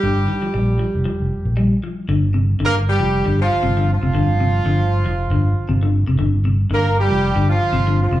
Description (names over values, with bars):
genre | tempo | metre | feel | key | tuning
afrobeat | 117 BPM | 4/4 | swing 54% on 16ths | G minor | A4 = 440 Hz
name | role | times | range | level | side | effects
clear horn section | melody | 0.0-8.2 s | F3 to Bb4 | -20 LUFS | right 2 dB | slapback echo
semi-hollow electric guitar | arpeggios | 0.0-8.2 s | C3 to G3 | -23 LUFS | left 3 dB | spring reverb
fingered electric bass | bass | 0.0-8.2 s | F1 to Bb1 | -18 LUFS | equal | none
room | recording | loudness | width
light reverb | live gig heard through the venue's PA, club reverb | -16 LUFS | side -14 dB against mid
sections
0.0-2.1 A section; 2.1-8.2 B section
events
none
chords
0.0 Gm7; 2.1 G7(no3)